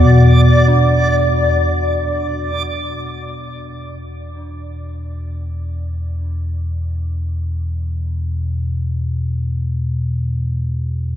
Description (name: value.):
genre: dark ambient drone.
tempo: free time.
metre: none.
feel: none.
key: unclear.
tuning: A4 = 440 Hz.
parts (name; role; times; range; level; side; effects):
deep rumbling drone; drone; 0.0-11.2 s; E2 to B2; -17 LUFS; left 1 dB; built-in reverb, phaser.
dark detuned synth bell; arpeggios; 0.7-11.2 s; D4; -33 LUFS; right 3 dB; chorus, diffuse ambient delay.
room: wet cathedral reverb, RT60 7.5 s.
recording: dark, warm production.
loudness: -15 LUFS.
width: side -11 dB against mid.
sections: 0.1-11.2 A section.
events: fade-in on synth drone 0.1-11.2; fade-in on synth bell 0.1-11.2.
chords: 0.1 E5.